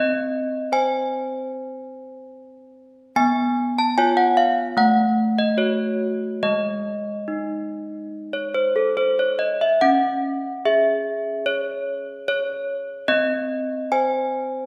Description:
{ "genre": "classical, tune for handbells", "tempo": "73 BPM", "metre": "4/4", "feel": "straight", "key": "unclear", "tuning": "A4 = 440 Hz", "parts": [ { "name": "desk bells", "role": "solo", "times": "0.0-14.7 s", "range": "G#3 to A5", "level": "-22 LUFS", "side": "equal", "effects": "none" } ], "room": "wet recital hall reverb, RT60 1.6 s", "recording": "recorded in a church or concert hall", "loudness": "-22 LUFS", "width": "mono", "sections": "0.0-14.7 A section", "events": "none", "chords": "0.0 N.C.; 3.1 C#7/B; 4.8 F#m/A; 6.4 G#5; 9.8 C#m; 13.1 N.C." }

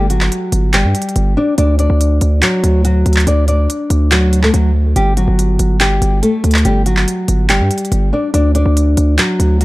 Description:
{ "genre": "hip hop, trap", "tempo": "142 BPM", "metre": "4/4", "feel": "half-time", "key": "unclear", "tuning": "A4 = 440 Hz", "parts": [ { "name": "nylon-string guitar", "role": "melody", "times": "0.0-9.6 s", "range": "F#3 to D5", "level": "-16 LUFS", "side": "left 1 dB", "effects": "tape echo" }, { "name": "distorted 808-style bass", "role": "bass", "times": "0.0-9.6 s", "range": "G1 to G2", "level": "-13 LUFS", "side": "equal", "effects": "distortion" }, { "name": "trap drum kit", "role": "drums", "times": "0.1-9.6 s", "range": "handclaps, hi-hat", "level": "-18 LUFS", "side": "equal", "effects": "none" } ], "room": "little or no reverb", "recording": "dark, warm production", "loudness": "-11 LUFS", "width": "side -19 dB against mid", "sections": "0.0-9.6 A section", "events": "none", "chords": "0.0 G5; 1.6 D; 5.0 Gsus2; 8.3 D" }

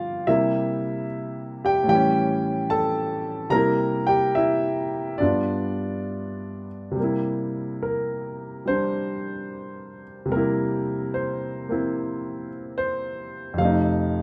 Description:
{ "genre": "solo jazz", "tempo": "73 BPM", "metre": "4/4", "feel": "swing 68% on 8ths, rubato", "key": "C mixolydian", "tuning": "A4 = 440 Hz", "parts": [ { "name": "warm concert grand piano", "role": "solo", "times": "0.0-14.2 s", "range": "F2 to Bb5", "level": "-25 LUFS", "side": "equal", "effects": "none" } ], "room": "light reverb", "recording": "none", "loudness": "-25 LUFS", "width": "mono", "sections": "0.0-7.0 A section; 7.0-14.2 B section", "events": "grand piano solo 7.0-14.2", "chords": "0.3 C7; 1.9 A7; 3.5 C7; 5.2 G7; 7.0 C7; 13.6 F7" }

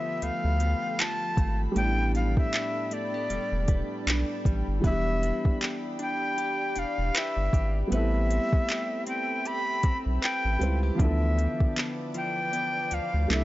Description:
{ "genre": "contemporary R&B", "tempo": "78 BPM", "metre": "4/4", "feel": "swing 58% on 16ths", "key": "D dorian", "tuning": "A4 = 439 Hz", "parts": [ { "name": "breathy bright jazz flute", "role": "melody", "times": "0.0-13.4 s", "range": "D5 to B5", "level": "-30 LUFS", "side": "left 1 dB", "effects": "tape echo" }, { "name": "felt-muted upright piano", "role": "accompaniment", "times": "0.0-13.4 s", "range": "E3 to C5", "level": "-34 LUFS", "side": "right 1 dB", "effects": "none" }, { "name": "ethereal airy pad", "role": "sustained chords", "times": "0.0-13.4 s", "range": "F3 to D6", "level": "-38 LUFS", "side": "equal", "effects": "ensemble chorus, built-in reverb" }, { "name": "direct-recorded clean electric guitar", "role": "arpeggios", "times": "0.0-13.4 s", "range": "A2 to B4", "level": "-37 LUFS", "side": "left 2 dB", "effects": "spring reverb" }, { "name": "saturated sub bass", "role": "bass", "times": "0.2-13.4 s", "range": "E1 to D2", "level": "-27 LUFS", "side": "equal", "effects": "none" }, { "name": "smooth R&B drum kit", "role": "drums", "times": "0.2-13.4 s", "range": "handclaps, hi-hat, kick drum", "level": "-26 LUFS", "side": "equal", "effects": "overdrive" } ], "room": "little or no reverb", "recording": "dry, gritty hardware recording, nothing above 7.6 kHz", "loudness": "-25 LUFS", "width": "side -16 dB against mid", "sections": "0.0-4.8 A section; 4.8-13.4 B section", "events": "none", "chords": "0.0 G9/D; 1.8 A9sus4; 4.8 Em7; 7.9 Am9; 11.0 Dm69" }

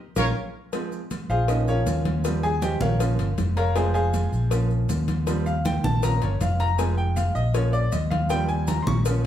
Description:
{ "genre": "latin, salsa", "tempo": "158 BPM", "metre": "4/4", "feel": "straight", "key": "unclear", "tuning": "A4 = 440 Hz", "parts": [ { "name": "bright upright piano", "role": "accompaniment", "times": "0.2-9.3 s", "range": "F3 to Db6", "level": "-26 LUFS", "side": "right 1 dB", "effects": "none" }, { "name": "fingered electric bass", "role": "bass", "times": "0.2-9.3 s", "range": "F1 to Eb2", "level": "-23 LUFS", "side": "equal", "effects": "none" }, { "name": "congas", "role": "percussion", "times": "0.2-9.2 s", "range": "none", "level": "-30 LUFS", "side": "right 1 dB", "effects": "none" }, { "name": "cowbell", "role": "percussion", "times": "0.2-9.2 s", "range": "none", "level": "-34 LUFS", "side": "left 6 dB", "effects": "none" }, { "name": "maracas", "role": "percussion", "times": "0.2-9.3 s", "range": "none", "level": "-42 LUFS", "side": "right 3 dB", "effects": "none" } ], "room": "wet studio reverb, RT60 0.9 s", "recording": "heard from further back in the room", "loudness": "-21 LUFS", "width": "side -11 dB against mid", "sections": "0.7-9.3 A section", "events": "band accent 0.0-0.7; upright piano solo 0.7-9.3", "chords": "0.0 Bbm; 0.7 Fm; 1.5 Bbm; 2.2 Eb6; 3.0 Bbm; 3.8 Fm; 4.5 Bbm; 5.3 Eb6; 6.0 Bbm; 6.8 Fm; 7.5 Bbm; 8.3 Eb6" }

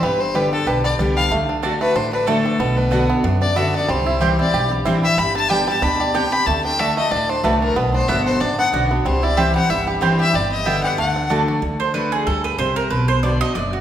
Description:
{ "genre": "bluegrass", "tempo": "186 BPM", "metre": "4/4", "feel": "swing 55% on 8ths", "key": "D mixolydian", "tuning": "A4 = 445 Hz", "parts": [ { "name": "clear fiddle", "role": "melody", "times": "0.0-11.3 s", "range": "G4 to B5", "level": "-21 LUFS", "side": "left 2 dB", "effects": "none" }, { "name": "picked steel-string acoustic guitar", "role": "accompaniment", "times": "0.0-13.8 s", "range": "F#2 to G4", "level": "-22 LUFS", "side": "left 1 dB", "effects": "none" }, { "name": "bluegrass banjo", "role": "arpeggios", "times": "0.0-11.6 s", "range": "G3 to G4", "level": "-23 LUFS", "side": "right 3 dB", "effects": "none" }, { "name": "upright bass", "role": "bass", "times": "0.0-13.8 s", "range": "F#1 to F#2", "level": "-24 LUFS", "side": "equal", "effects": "none" }, { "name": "mandolin", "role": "stabs", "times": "1.6-13.8 s", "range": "A3 to A5", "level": "-24 LUFS", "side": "right 4 dB", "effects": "none" } ], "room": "wet recital hall reverb, RT60 1.5 s", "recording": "recorded in a church or concert hall", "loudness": "-16 LUFS", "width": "side -10 dB against mid", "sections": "0.0-11.6 A section; 11.6-13.8 B section", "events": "mandolin solo 11.6-13.8", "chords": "0.0 G; 1.3 D; 2.6 Bm; 3.9 C; 5.2 G; 6.5 D; 7.8 Bm; 9.1 C; 10.3 G; 11.0 D; 12.9 Bm" }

